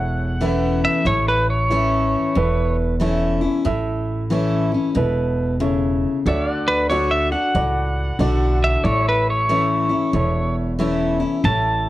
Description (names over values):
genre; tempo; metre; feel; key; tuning
honky-tonk and classic country; 92 BPM; 4/4; swing 64% on 8ths; A major; A4 = 440 Hz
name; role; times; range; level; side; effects
pedal steel guitar; melody; 0.0-2.8, 6.7-11.9 s; B4 to A5; -20 LUFS; equal; none
picked steel-string acoustic guitar; accompaniment; 0.0-11.9 s; E2 to F#4; -22 LUFS; left 3 dB; none
warm baby grand piano; accompaniment; 0.0-11.9 s; E4 to E5; -26 LUFS; right 4 dB; none
pedal steel guitar; sustained chords; 0.0-11.9 s; C#5 to F#5; -30 LUFS; equal; none
upright bass; bass; 0.0-11.9 s; E1 to D2; -22 LUFS; right 1 dB; none
room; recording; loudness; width
moderate studio reverb, RT60 0.9 s; worn, warbling old tape, cassette tape, warbly pitch drift; -17 LUFS; side -15 dB against mid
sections
0.0-11.9 A section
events
pedal steel guitar solo 0.0-11.9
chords
0.0 A; 6.3 D; 8.8 A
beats
0.41 | 1.06 1.71 2.36 3.01 | 3.66 4.30 4.95 5.60 | 6.25 6.90 7.55 8.20 | 8.85 9.49 10.14 10.79 | 11.44